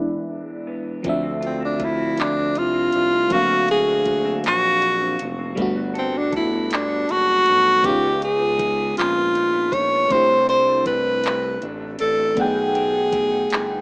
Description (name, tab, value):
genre	slow six-eight R&B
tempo	53 BPM (dotted quarters)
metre	6/8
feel	straight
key	unclear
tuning	A4 = 440 Hz
part	breathy tenor saxophone	melody	0.0-13.8 s	C4 to C#5	-21 LUFS	equal	none
part	electric guitar through a small old amp	second line	0.0-13.8 s	B2 to A4	-35 LUFS	equal	subtle chorus
part	FM electric piano	accompaniment	0.0-13.8 s	E3 to G5	-29 LUFS	equal	chorus
part	smooth R&B drum kit	drums	1.0-13.7 s	handclaps, hi-hat, kick drum	-30 LUFS	equal	none
part	smooth gliding synth bass	bass	1.1-13.8 s	E#1 to D2	-32 LUFS	equal	none
room	light reverb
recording	rough home demo mix, low-pass filter, small speaker sound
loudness	-20 LUFS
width	mono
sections	0.0-1.0 A section; 1.0-13.8 B section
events	break 0.0-1.0; filter sweep 0.0-1.0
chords	0.0 E7; 1.0 Dm7; 3.3 D7alt; 5.6 Gmaj9; 7.8 C#9; 10.1 C69; 12.4 B7b13